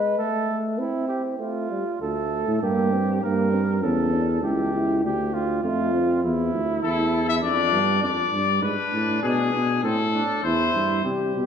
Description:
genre	classical, imitative canzona for brass ensemble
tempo	100 BPM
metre	4/4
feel	straight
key	D minor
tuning	A4 = 438 Hz
part	mellow trumpet	second line	0.0-11.5 s	C4 to B4	-28 LUFS	right 4 dB	none
part	warm euphonium	accompaniment	0.0-6.2, 11.0-11.5 s	G3 to E4	-26 LUFS	equal	none
part	warm bass trombone	bass	2.0-11.5 s	C#2 to C3	-24 LUFS	equal	none
part	bright trumpet	melody	6.8-11.0 s	G#4 to E5	-23 LUFS	left 6 dB	none
room	wet concert hall reverb, RT60 2.5 s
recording	small room reverb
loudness	-21 LUFS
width	side -7 dB against mid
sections	0.0-1.4 A section; 1.4-11.0 B section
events	none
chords	0.2 Am; 1.4 Dm; 2.6 Gmadd11; 3.8 C#dim/E; 5.0 Dm; 6.2 A5; 7.4 Dmadd11/F; 8.6 G#dim; 9.8 Am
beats	0.18 0.79 | 1.40 2.01 2.62 3.23 | 3.83 4.43 5.03 5.63 | 6.24 6.83 7.43 8.02 | 8.62 9.22 9.83 10.43 | 11.05

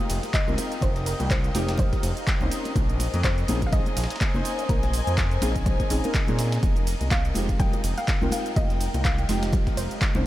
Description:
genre	deep house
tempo	124 BPM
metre	4/4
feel	swing 57% on 16ths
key	F minor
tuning	A4 = 442 Hz
part	soft round pluck	melody	0.0-10.2 s	Bb4 to G5	-35 LUFS	equal	lush chorus, diffuse ambient delay
part	dark analog pad	sustained chords	0.0-10.3 s	Ab3 to F6	-37 LUFS	left 1 dB	chorus, phaser, sidechain pumping
part	deep mellow chord stab	stabs	0.0-10.3 s	Ab3 to C5	-32 LUFS	equal	chorus, vintage 12-bit sampler grit, sidechain pumping, diffuse ambient delay
part	deep house drum kit	drums	0.0-10.2 s	handclaps, hi-hat, ride cymbal, shaker	-32 LUFS	right 1 dB	none
part	dark studio string section	texture	0.0-10.3 s	Bb4 to Ab5	-36 LUFS	left 3 dB	sidechain pumping
part	smooth synth bass	bass	0.1-10.2 s	F1 to Bb2	-27 LUFS	equal	sidechain pumping
part	dusty soul sampler-style drum kit	drums	0.1-10.1 s	hi-hat, snare drum	-41 LUFS	equal	none
part	congas	percussion	0.2-10.2 s	none	-36 LUFS	left 2 dB	none
part	electronic kick drum	drums	0.3-10.1 s	none	-25 LUFS	equal	none
room	light reverb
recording	none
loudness	-22 LUFS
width	side -15 dB against mid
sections	0.0-10.3 A section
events	none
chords	0.0 Fm9; 2.5 Bbm11; 6.6 Fm9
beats	0.34 | 0.82 1.31 1.79 2.27 | 2.76 3.24 3.73 4.21 | 4.69 5.18 5.66 6.14 | 6.63 7.11 7.60 8.08 | 8.56 9.05 9.53 10.02

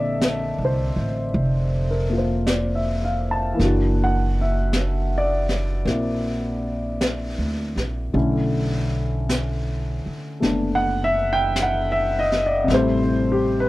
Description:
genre	jazz ballad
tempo	53 BPM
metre	4/4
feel	swing 68% on 8ths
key	unclear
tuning	A4 = 440 Hz
part	warm baby grand piano	accompaniment	0.0-13.7 s	C3 to A5	-22 LUFS	left 1 dB	none
part	upright bass	bass	0.0-13.7 s	F1 to D2	-24 LUFS	right 1 dB	none
part	vintage brush drum kit	drums	0.2-13.7 s	brushed snare drum, hi-hat, snare drum	-28 LUFS	equal	none
room	little or no reverb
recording	none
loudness	-20 LUFS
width	side -18 dB against mid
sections	0.0-13.7 A section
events	none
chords	0.0 Bbmaj9; 3.6 F#aug7; 8.1 Bm11; 12.7 Am7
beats	0.22 1.35 2.48 | 3.61 4.74 5.87 7.01 | 8.14 9.28 10.41 11.55 | 12.68

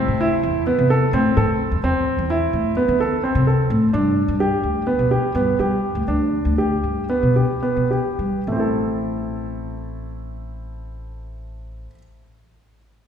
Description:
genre	contemporary instrumental, chamber music in an uneven meter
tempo	205-258 BPM (eighths)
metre	9/8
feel	straight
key	A minor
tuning	A4 = 441 Hz
part	warm concert grand piano	arpeggios	0.0-12.0 s	A3 to A4	-20 LUFS	right 1 dB	none
part	upright bass	bass	0.1-11.9 s	A1 to G3	-22 LUFS	left 1 dB	none
room	wet concert hall reverb, RT60 2.6 s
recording	heard from further back in the room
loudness	-17 LUFS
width	side -8 dB against mid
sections	0.0-8.5 A section; 8.5-13.1 B section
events	slowing down 4.4-8.5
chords	0.0 Am; 3.9 G; 8.5 Am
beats	0.20 0.43 0.67 0.90 1.13 1.36 1.60 | 1.83 2.06 2.30 2.53 2.77 3.00 3.23 3.47 3.70 | 3.93 4.17 4.40 4.64 4.87 5.11 5.35 5.59 5.83 | 6.08 6.32 6.58 6.83 7.09 7.36 7.63 7.91 8.19 | 8.48 8.77 9.06 9.35 9.65 9.94 10.23 10.52 10.81 | 11.11 11.40 11.69 11.98

